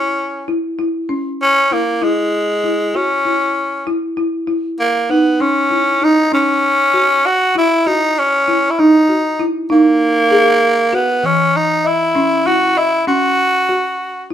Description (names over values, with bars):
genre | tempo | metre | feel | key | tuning
progressive instrumental, progressive | 195 BPM (eighths) | 11/8 | straight | C# dorian | A4 = 439 Hz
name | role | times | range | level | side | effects
growling tenor saxophone | melody | 0.0-14.3 s | G#3 to F#4 | -14 LUFS | equal | none
folk marimba with soft mallets | arpeggios | 0.0-14.3 s | E3 to D#5 | -17 LUFS | equal | none
room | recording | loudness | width
wet studio reverb, RT60 0.8 s | minimal, uncompressed stereo recording | -12 LUFS | side -10 dB against mid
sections
0.0-4.5 A section; 4.5-14.3 A section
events
none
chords
0.0 N.C.; 4.5 C#m; 7.9 D#m; 11.2 F#5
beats
0.17 0.48 0.79 | 1.10 1.41 1.71 2.02 2.33 2.64 2.94 3.25 3.56 3.87 4.17 | 4.48 4.79 5.10 5.40 5.71 6.02 6.33 6.63 6.94 7.25 7.55 | 7.86 8.17 8.47 8.78 9.09 9.40 9.70 10.01 10.32 10.62 10.93 | 11.24 11.54 11.85 12.16 12.46 12.77 13.08 13.38 13.69 14.00 14.30